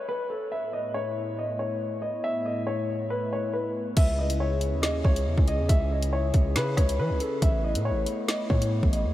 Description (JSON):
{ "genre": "hip hop, drill", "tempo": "139 BPM", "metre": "4/4", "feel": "half-time", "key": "C# minor", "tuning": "A4 = 437 Hz", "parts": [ { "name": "dark concert grand piano", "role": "melody", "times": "0.0-9.1 s", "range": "A4 to E5", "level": "-29 LUFS", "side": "left 1 dB", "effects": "low-pass filter, tape echo" }, { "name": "hollow soft pad", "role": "sustained chords", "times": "0.5-9.1 s", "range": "A2 to G#4", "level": "-32 LUFS", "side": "equal", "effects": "chorus" }, { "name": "distorted 808-style bass", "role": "bass", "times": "4.0-9.1 s", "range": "A1 to E3", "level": "-27 LUFS", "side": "equal", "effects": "distortion" }, { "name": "drill drum kit", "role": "drums", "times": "4.0-9.0 s", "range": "crash cymbal, hi-hat, kick drum, rim click, snare drum", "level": "-25 LUFS", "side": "equal", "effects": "none" } ], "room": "moderate huge ambient reverb, RT60 7.2 s", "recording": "dreamy mix soaked in reverb", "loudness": "-24 LUFS", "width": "side -14 dB against mid", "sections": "0.0-4.0 A section; 4.0-9.1 B section", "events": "none", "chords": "0.0 N.C.; 0.5 Asus2; 4.0 C#m; 7.4 Asus2" }